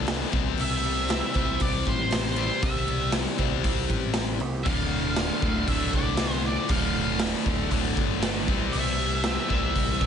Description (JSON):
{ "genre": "quiet-loud alternative rock", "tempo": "118 BPM", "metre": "4/4", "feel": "straight", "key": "unclear", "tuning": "A4 = 440 Hz", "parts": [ { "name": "picked steel-string acoustic guitar", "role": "arpeggios", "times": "0.0-4.7 s", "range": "C3 to C5", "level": "-36 LUFS", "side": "right 11 dB", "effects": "plate reverb" }, { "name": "distorted electric guitar", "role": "riff", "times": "0.0-10.1 s", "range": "D2 to C4", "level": "-29 LUFS", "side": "left 15 dB", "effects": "overdrive" }, { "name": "growling picked electric bass", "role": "bass", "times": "0.0-10.1 s", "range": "D1 to C2", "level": "-31 LUFS", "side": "equal", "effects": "overdrive" }, { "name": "raw garage drum kit", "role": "drums", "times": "0.1-10.1 s", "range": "hi-hat, kick drum, snare drum", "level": "-28 LUFS", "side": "right 1 dB", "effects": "none" }, { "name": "octave-fuzz lead guitar", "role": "melody", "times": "0.6-10.1 s", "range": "C5 to F5", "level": "-30 LUFS", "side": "right 3 dB", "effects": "distortion, slapback echo, plate reverb" }, { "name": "cranked stack guitar", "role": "riff", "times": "4.6-10.1 s", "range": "D2 to C4", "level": "-31 LUFS", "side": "right 14 dB", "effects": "overdrive" } ], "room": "little or no reverb", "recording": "nothing above 10.4 kHz", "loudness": "-23 LUFS", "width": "side -8 dB against mid", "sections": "0.0-10.1 A section", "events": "none", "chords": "0.3 C; 4.7 Dm; 8.5 C" }